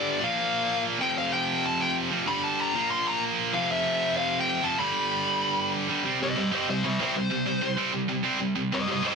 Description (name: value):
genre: punk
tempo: 190 BPM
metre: 4/4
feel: straight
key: C major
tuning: A4 = 437 Hz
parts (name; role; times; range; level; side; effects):
- bluesy overdriven lead guitar; melody; 0.0-9.2 s; E4 to C6; -28 LUFS; left 2 dB; distortion
- tight distorted guitar; riff; 0.0-9.2 s; F2 to C4; -26 LUFS; right 2 dB; distortion
room: light reverb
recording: dense, heavily limited modern master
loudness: -24 LUFS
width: side -5 dB against mid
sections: 0.0-6.1 A section; 6.1-9.2 B section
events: half time 0.0-6.1; lead electric guitar solo 6.1-9.2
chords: 0.2 Bb5; 1.0 F5; 2.3 G5; 2.7 Bb5; 3.5 F5; 4.8 G; 6.1 C5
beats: 0.06 0.38 0.69 | 1.01 1.32 1.64 1.96 | 2.27 2.59 2.90 3.22 | 3.53 3.85 4.16 4.48 | 4.79 5.11 5.42 5.74 | 6.05 6.37 6.68 7.00 | 7.31 7.63 7.94 8.26 | 8.57 8.88